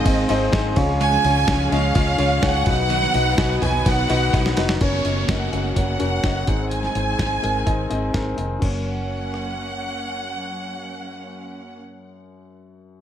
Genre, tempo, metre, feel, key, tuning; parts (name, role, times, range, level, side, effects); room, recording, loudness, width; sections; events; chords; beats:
piano-driven pop; 126 BPM; 4/4; straight; F# major; A4 = 444 Hz
warm studio violin section; melody; 0.0-11.8 s; C#5 to G#5; -25 LUFS; right 2 dB
warm concert grand piano; accompaniment; 0.0-13.0 s; F#2 to G#5; -25 LUFS; left 4 dB
rich studio string section; sustained chords; 0.0-11.8 s; C#3 to C#4; -32 LUFS; right 2 dB
twelve-string electric guitar; riff; 0.0-4.8 s; B2 to C#5; -28 LUFS; right 7 dB; spring reverb
vintage muted fingered electric bass; bass; 0.1-11.8 s; E#1 to C#2; -24 LUFS; equal
dusty soul sampler-style drum kit; drums; 0.1-9.4 s; crash cymbal, hi-hat, kick drum, ride cymbal, rim click, snare drum, toms; -24 LUFS; equal
downlifter; sound effects; 4.8-8.6 s; -33 LUFS; right 3 dB
digital ambience; -18 LUFS; side -10 dB against mid
0.0-4.8 A section; 4.8-8.6 B section; 8.6-12.4 C section
drum fill 4.3-4.8
0.0 G#; 0.8 C#; 2.7 B; 4.8 F#; 6.5 G#; 8.6 F#
0.05 0.53 | 1.00 1.48 1.95 2.43 | 2.90 3.38 3.86 4.33 | 4.81 5.28 5.76 6.24 | 6.71 7.19 7.67 8.14 | 8.62 9.10 9.57 10.05 | 10.53 11.00 11.48 11.96